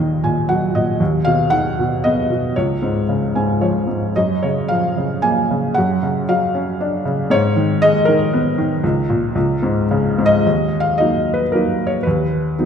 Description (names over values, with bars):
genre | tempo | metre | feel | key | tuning
classical, lyrical solo piano | 115 BPM | 3/4 | rubato | unclear | A4 = 441 Hz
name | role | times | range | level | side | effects
felt-muted upright piano | solo | 0.0-12.7 s | C#2 to G#5 | -15 LUFS | equal | none
room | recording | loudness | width
wet concert hall reverb, RT60 2.4 s | recorded in a church or concert hall | -15 LUFS | side -7 dB against mid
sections
0.0-10.4 A section; 10.4-12.7 B section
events
felt piano fill 0.0-1.0, 3.1-4.1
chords
0.0 D#m; 1.0 B/D#; 2.6 C#; 4.1 F#maj7; 5.8 C#add11/F#; 7.3 G#madd9; 8.8 A#m/C#; 9.4 C#5; 10.4 Ebm; 12.1 B/D#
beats
0.49 | 1.01 1.52 2.04 | 2.55 3.07 3.60 | 4.15 4.69 5.22 | 5.76 6.29 6.80 | 7.31 7.82 8.32 | 8.84 9.35 9.89 | 10.45 10.99 11.53 | 12.05 12.58